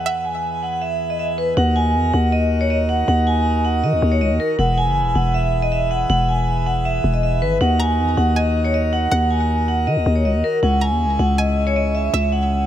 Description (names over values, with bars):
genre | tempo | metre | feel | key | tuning
hip hop | 159 BPM | 4/4 | half-time | Eb phrygian | A4 = 443 Hz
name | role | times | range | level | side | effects
vibraphone with medium hard mallets | melody | 0.0-12.7 s | Bb4 to G#5 | -20 LUFS | right 1 dB | low-pass filter, ping-pong delay
string-like resonator pluck | second line | 0.0-1.5, 7.8-12.7 s | E5 to Bb5 | -31 LUFS | right 2 dB | chorus, ping-pong delay
pipe organ, plenum | sustained chords | 0.0-12.7 s | E2 to B4 | -27 LUFS | equal | low-pass filter
growling 808-style bass | bass | 1.6-12.7 s | E1 to Eb3 | -18 LUFS | equal | none
room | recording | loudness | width
little or no reverb | none | -16 LUFS | side -11 dB against mid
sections
0.0-1.6 A section; 1.6-12.7 B section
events
filter sweep 0.0-1.6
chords
0.0 E; 1.6 Ebm; 4.6 E; 7.6 Ebm; 10.6 Dbm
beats
| 0.06 0.44 0.82 1.19 | 1.57 1.95 2.33 2.70 | 3.08 3.46 3.83 4.21 | 4.59 4.97 5.34 5.72 | 6.10 6.48 6.85 7.23 | 7.61 7.99 8.36 8.74 | 9.12 9.49 9.87 10.25 | 10.63 11.01 11.38 11.76 | 12.14 12.51